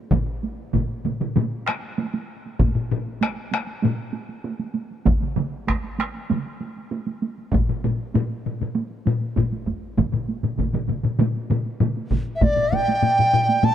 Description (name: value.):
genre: japanese traditional, taiko drum ensemble.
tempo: 98 BPM.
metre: 4/4.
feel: straight.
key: unclear.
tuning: A4 = 441 Hz.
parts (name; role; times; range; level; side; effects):
taiko ensemble; percussion; 0.1-13.7 s; none; -27 LUFS; right 5 dB; none.
taiko ensemble; percussion; 0.1-13.7 s; none; -24 LUFS; left 4 dB; none.
taiko ensemble; percussion; 0.1-12.3 s; none; -28 LUFS; right 3 dB; none.
taiko ensemble; percussion; 0.1-12.6 s; none; -24 LUFS; equal; none.
reedy large dizi; melody; 12.4-13.7 s; D5 to A5; -18 LUFS; right 1 dB; none.
room: moderate huge ambient reverb, RT60 4.4 s.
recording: dark, warm production.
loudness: -21 LUFS.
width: side -10 dB against mid.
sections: 0.0-12.4 A section; 12.4-13.7 B section.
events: none.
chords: none.